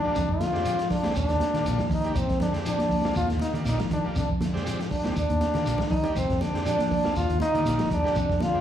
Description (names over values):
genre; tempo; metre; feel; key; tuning
afrobeat; 120 BPM; 4/4; straight; unclear; A4 = 442 Hz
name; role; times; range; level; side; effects
warm trombone; melody; 0.0-8.6 s; C4 to F4; -27 LUFS; equal; slapback echo
combo organ; accompaniment; 0.0-8.6 s; G3 to G4; -37 LUFS; right 2 dB; slapback echo
semi-hollow electric guitar; arpeggios; 0.2-8.6 s; Bb2 to F3; -35 LUFS; left 6 dB; spring reverb
fingered electric bass; bass; 0.2-8.5 s; Bb1 to Eb3; -29 LUFS; equal; none
crunchy breakbeat drum kit; drums; 0.2-8.5 s; hi-hat, kick drum, snare drum; -32 LUFS; equal; none
shekere; percussion; 0.2-8.5 s; none; -38 LUFS; right 2 dB; slapback echo
congas; percussion; 0.4-8.5 s; none; -31 LUFS; right 1 dB; slapback echo
vibraphone with hard mallets; second line; 5.2-8.6 s; C5 to F5; -33 LUFS; right 6 dB; slapback echo
room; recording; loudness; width
small room reverb; live gig heard through the venue's PA, club reverb; -23 LUFS; side -10 dB against mid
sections
0.0-8.6 A section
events
drum fill 5.5-6.2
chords
0.2 Fm69; 1.2 Ebmaj9; 2.2 Fm69; 3.2 Ebmaj9; 4.2 Fm69; 5.2 Ebmaj9; 6.2 Fm69; 7.2 Ebmaj9